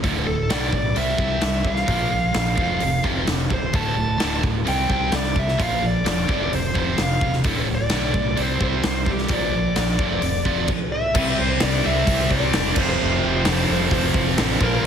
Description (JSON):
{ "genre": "hard rock", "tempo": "130 BPM", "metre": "4/4", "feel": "straight", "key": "unclear", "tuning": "A4 = 440 Hz", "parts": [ { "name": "heavy high-gain guitar", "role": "riff", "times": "0.0-14.9 s", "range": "D2 to C4", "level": "-26 LUFS", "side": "right 9 dB", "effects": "distortion" }, { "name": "sludgy distorted guitar", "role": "riff", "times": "0.0-14.9 s", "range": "D2 to C4", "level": "-27 LUFS", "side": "left 8 dB", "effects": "overdrive" }, { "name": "modern bright fingered electric bass", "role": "bass", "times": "0.0-14.9 s", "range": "D1 to C2", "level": "-27 LUFS", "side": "equal", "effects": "none" }, { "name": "big rock drum kit", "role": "drums", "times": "0.0-14.7 s", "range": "crash cymbal, hi-hat, kick drum, snare drum", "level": "-24 LUFS", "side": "equal", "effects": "none" }, { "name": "bluesy overdriven lead guitar", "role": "melody", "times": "0.3-14.8 s", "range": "G4 to A5", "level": "-25 LUFS", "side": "equal", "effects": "distortion, slapback echo" }, { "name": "high-gain distorted guitar", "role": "riff", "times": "11.1-14.9 s", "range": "F2 to C4", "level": "-26 LUFS", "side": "equal", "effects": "distortion" }, { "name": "tonewheel organ", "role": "sustained chords", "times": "11.2-14.9 s", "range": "F3 to D5", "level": "-34 LUFS", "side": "right 1 dB", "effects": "none" } ], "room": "light reverb", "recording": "heavily compressed radio sound, multiband compression", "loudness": "-18 LUFS", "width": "side -8 dB against mid", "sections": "0.0-11.2 A section; 11.2-14.9 B section", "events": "none", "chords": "0.0 D5; 1.0 C; 1.9 Bb5; 2.6 F5; 3.7 D5; 4.7 C5; 5.6 Bb5; 6.3 F5; 7.5 D5; 8.4 C5; 9.3 Bb; 10.0 F5; 10.7 N.C.; 11.2 C; 12.8 F5" }